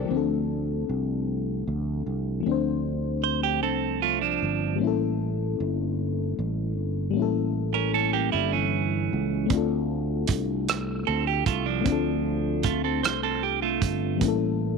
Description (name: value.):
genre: slow six-eight R&B.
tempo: 51 BPM (dotted quarters).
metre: 6/8.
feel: straight.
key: unclear.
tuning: A4 = 441 Hz.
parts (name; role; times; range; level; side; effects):
mellow FM electric piano; accompaniment; 0.0-14.8 s; F3 to C5; -28 LUFS; left 13 dB; chorus.
fretless electric bass; bass; 0.0-14.8 s; G1 to D2; -28 LUFS; right 3 dB; none.
clean electric guitar; second line; 3.2-14.2 s; E3 to C5; -26 LUFS; right 19 dB; none.
warm soul drum kit; drums; 9.5-14.4 s; hi-hat, kick drum, rim click; -27 LUFS; right 6 dB; none.
room: studio reverb.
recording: 1960s-style stereo with parts hard left and right.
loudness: -24 LUFS.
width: side -4 dB against mid.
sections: 0.1-14.8 A section.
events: none.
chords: 0.1 Dm7; 4.8 A7b9; 9.5 Dm7; 14.2 A7b9.